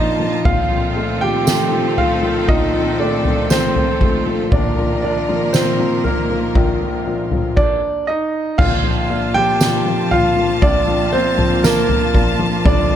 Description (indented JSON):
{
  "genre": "pop ballad",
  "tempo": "59 BPM",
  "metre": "4/4",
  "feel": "straight",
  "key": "Bb major",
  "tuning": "A4 = 439 Hz",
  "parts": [
    { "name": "clear concert grand piano", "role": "melody", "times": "0.0-13.0 s", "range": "Bb3 to G5", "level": "-19 LUFS", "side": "right 2 dB", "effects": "digital delay" },
    { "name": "warm upright piano", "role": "accompaniment", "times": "0.0-13.0 s", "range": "F1 to A3", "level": "-20 LUFS", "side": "left 4 dB", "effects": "none" },
    { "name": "rich chamber string section", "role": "sustained chords", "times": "0.0-13.0 s", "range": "Bb2 to A5", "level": "-23 LUFS", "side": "right 2 dB", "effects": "none" },
    { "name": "soft-mallet drum kit", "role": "drums", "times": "0.5-12.9 s", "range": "crash cymbal, kick drum, snare drum, toms", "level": "-19 LUFS", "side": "equal", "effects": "none" },
    { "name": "tambourine", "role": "percussion", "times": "1.5-11.9 s", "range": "none", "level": "-28 LUFS", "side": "right 13 dB", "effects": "none" }
  ],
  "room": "light reverb, small room ambience",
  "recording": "none",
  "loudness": "-14 LUFS",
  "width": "side -10 dB against mid",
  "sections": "0.0-8.6 A section; 8.6-13.0 A section",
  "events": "none",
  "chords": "0.5 F7/Bb; 4.5 Ebsus2/Bb; 8.6 Bbmaj7"
}